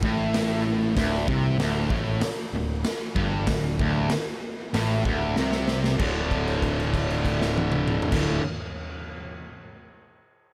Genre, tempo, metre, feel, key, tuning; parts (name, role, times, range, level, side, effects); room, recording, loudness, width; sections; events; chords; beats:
garage rock duo or trio; 96 BPM; 4/4; straight; A4 = 440 Hz
fuzz guitar; riff; 0.0-8.4 s; D2 to D3; -28 LUFS; equal; distortion
fuzz picked electric bass; bass; 0.0-8.4 s; D1 to C2; -32 LUFS; equal; overdrive, tube saturation
raw garage drum kit; drums; 0.0-8.3 s; crash cymbal, hi-hat, kick drum, snare drum, toms; -31 LUFS; equal
light reverb, studio reverb; -25 LUFS; mono
0.0-6.0 A section; 6.0-8.5 B section
drum fill 5.4-6.0; held note 6.0-8.1
0.0 D5
0.35 | 0.98 1.60 2.23 2.86 | 3.49 4.12 4.75 5.37 | 6.00 6.62 7.25 7.87